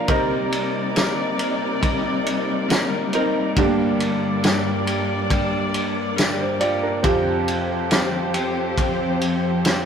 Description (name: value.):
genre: pop ballad.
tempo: 69 BPM.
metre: 4/4.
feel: straight.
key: C minor.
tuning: A4 = 440 Hz.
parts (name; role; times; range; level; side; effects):
clear concert grand piano; accompaniment; 0.0-9.9 s; F2 to D5; -24 LUFS; right 2 dB; none.
muted studio string section; sustained chords; 0.0-9.9 s; F2 to D5; -24 LUFS; left 1 dB; none.
direct-recorded clean electric guitar; arpeggios; 0.0-9.9 s; G2 to Bb4; -26 LUFS; left 3 dB; none.
loose indie drum kit; drums; 0.1-9.9 s; kick drum, ride cymbal, snare drum; -24 LUFS; equal; none.
tambourine; percussion; 1.0-9.9 s; none; -37 LUFS; right 5 dB; none.
room: moderate stone room reverb, RT60 1.1 s.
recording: rough rehearsal-room recording.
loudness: -19 LUFS.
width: side -7 dB against mid.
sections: 0.0-9.9 A section.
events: none.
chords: 0.1 Cm7; 3.6 Gm; 7.0 Fsus2.